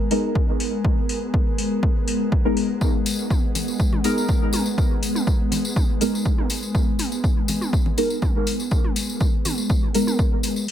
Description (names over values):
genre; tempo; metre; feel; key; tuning
dub techno; 122 BPM; 4/4; straight; G# minor; A4 = 440 Hz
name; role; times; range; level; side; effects
airy breathy pad; sustained chords; 0.0-10.7 s; G#3 to A#4; -26 LUFS; equal; chorus, sidechain pumping
deep mellow chord stab; stabs; 0.0-10.7 s; G#3 to A#4; -25 LUFS; equal; chorus, phaser, dub echo
soft vintage rhythm box; drums; 0.1-10.7 s; crash cymbal, hi-hat; -31 LUFS; left 3 dB; overdrive
electronic kick drum; drums; 0.4-10.3 s; none; -21 LUFS; equal; overdrive
tambourine; percussion; 2.8-10.7 s; none; -31 LUFS; left 3 dB; none
electronic toms and congas; percussion; 3.3-10.2 s; none; -33 LUFS; equal; overdrive, sidechain pumping on toms, sidechain pumping on perc, dub echo
room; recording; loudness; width
light reverb; none; -19 LUFS; side -10 dB against mid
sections
0.0-10.7 A section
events
none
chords
0.0 G#madd9